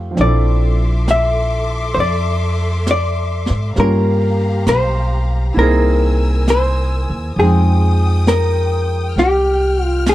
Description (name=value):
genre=jazz ballad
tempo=67 BPM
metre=4/4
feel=swing 69% on 8ths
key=unclear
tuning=A4 = 440 Hz
part: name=vintage hollow-body jazz guitar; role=melody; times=0.0-10.1 s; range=G4 to F5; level=-18 LUFS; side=left 1 dB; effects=none
part: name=clear concert grand piano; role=accompaniment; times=0.0-10.1 s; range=F3 to G5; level=-22 LUFS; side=right 2 dB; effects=none
part: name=upright bass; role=bass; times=0.0-10.1 s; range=Bb1 to Ab2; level=-16 LUFS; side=equal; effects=none
part: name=warm symphonic string section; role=sustained chords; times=0.2-10.1 s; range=G4 to F6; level=-27 LUFS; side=left 2 dB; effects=none
part: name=jazz brush drum kit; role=drums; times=0.2-10.1 s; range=brushed snare drum, hi-hat, snare drum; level=-20 LUFS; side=right 1 dB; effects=none
room=small room ambience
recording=dry, close 1970s-style studio recording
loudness=-13 LUFS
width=side -15 dB against mid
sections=0.0-10.1 A section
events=none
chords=0.2 Bbmaj9#11; 3.8 Gm7b5; 5.6 C7alt; 7.4 Fm9